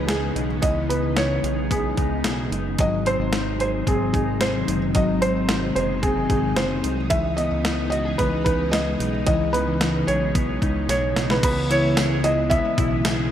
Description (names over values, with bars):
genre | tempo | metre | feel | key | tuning
dream pop | 111 BPM | 4/4 | straight | C# minor | A4 = 439 Hz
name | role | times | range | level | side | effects
felt-muted upright piano | melody | 0.0-13.3 s | G#4 to E5 | -25 LUFS | right 2 dB | digital delay
string machine, full ensemble | sustained chords | 0.0-13.3 s | B#2 to E4 | -27 LUFS | equal | ensemble chorus
mellow electric guitar | arpeggios | 0.0-13.3 s | E3 to G#4 | -27 LUFS | left 4 dB | lush chorus, digital delay
fat analog bass | bass | 0.0-13.3 s | F#1 to C#2 | -27 LUFS | equal | none
clean 12-bit digital drum machine | drums | 0.1-13.2 s | crash cymbal, hi-hat, kick drum, snare drum, tambourine | -25 LUFS | equal | gated reverb
room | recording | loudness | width
moderate lush hall reverb, RT60 1.9 s | bright 1980s-style digital production | -19 LUFS | side -10 dB against mid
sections
0.0-11.4 A section; 11.4-13.3 B section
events
drum fill 10.9-11.4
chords
0.0 C#m9; 2.8 G#7; 7.1 C#m9; 11.4 C#m7